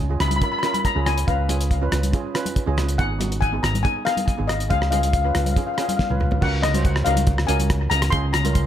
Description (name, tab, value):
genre	calypso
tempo	140 BPM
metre	4/4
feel	straight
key	Db mixolydian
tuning	A4 = 440 Hz
part	fingered electric bass	bass	0.0-8.7 s	Ab1 to Db2	-22 LUFS	equal	none
part	steel pan	accompaniment	0.1-8.6 s	Cb4 to C5	-29 LUFS	right 7 dB	analog delay
part	steel pan	melody	0.2-8.7 s	Eb5 to C6	-24 LUFS	left 5 dB	analog delay
part	cloth-damped thuddy drum kit	drums	0.2-8.7 s	crash cymbal, hi-hat, kick drum, rim click, snare drum, toms	-24 LUFS	equal	analog delay
part	congas	percussion	0.2-8.5 s	none	-31 LUFS	left 2 dB	none
room	little or no reverb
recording	echo-heavy mix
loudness	-19 LUFS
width	side -10 dB against mid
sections	0.0-6.4 A section; 6.4-8.7 B section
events	drum fill 6.0-6.4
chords	0.0 Db; 3.0 Abm; 4.7 Db7; 6.4 Gbmaj7/Db; 8.1 Db6